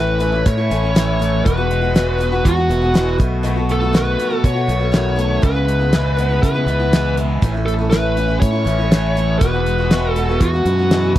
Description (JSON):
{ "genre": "folk rock and heartland rock", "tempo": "121 BPM", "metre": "4/4", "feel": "straight", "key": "E major", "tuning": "A4 = 441 Hz", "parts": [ { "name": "bluesy overdriven lead guitar", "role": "melody", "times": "0.0-11.1 s", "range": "F#4 to C#5", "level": "-20 LUFS", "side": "left 1 dB", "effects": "distortion" }, { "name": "picked acoustic archtop guitar", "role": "accompaniment", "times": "0.0-11.2 s", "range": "E2 to F#4", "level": "-23 LUFS", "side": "left 3 dB", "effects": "none" }, { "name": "overdriven electric guitar", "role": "riff", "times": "0.0-11.2 s", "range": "E2 to F#4", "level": "-23 LUFS", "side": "right 3 dB", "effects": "phaser" }, { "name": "fingered electric bass", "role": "bass", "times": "0.0-11.2 s", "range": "E1 to C#3", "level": "-19 LUFS", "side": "equal", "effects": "none" }, { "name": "damped 70s drum kit", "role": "drums", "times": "0.2-11.2 s", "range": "hi-hat, kick drum, snare drum", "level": "-15 LUFS", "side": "equal", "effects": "none" } ], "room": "little or no reverb", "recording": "dry, close 1970s-style studio recording", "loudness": "-14 LUFS", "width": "side -13 dB against mid", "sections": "0.0-11.2 A section", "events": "none", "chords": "0.0 A; 1.5 Eadd9; 3.2 B7; 5.4 C#m7; 7.4 A; 9.4 Eadd9" }